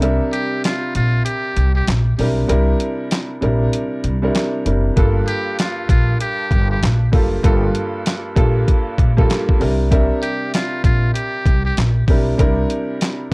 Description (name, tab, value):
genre	hip hop, boom-bap hip-hop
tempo	97 BPM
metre	4/4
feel	swing 63% on 16ths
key	unclear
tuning	A4 = 440 Hz
part	warm grand piano	accompaniment	0.0-13.3 s	G2 to E5	-21 LUFS	right 1 dB	high-pass filter, low-pass filter
part	upright bass	bass	0.0-12.6 s	F#1 to C2	-18 LUFS	equal	none
part	boom bap sampler-style drum kit	drums	0.0-13.3 s	handclaps, hi-hat, kick drum, snare drum	-16 LUFS	equal	none
part	trumpet with metal mute	melody	0.3-11.8 s	F4 to G4	-24 LUFS	equal	high-pass filter, low-pass filter, tape echo
room	little or no reverb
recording	worn, warbling old tape, cassette tape, warbly pitch drift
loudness	-15 LUFS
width	side -29 dB against mid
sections	0.0-13.3 A section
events	break 0.0-5.0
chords	0.0 C7; 5.0 Gm9; 9.6 C7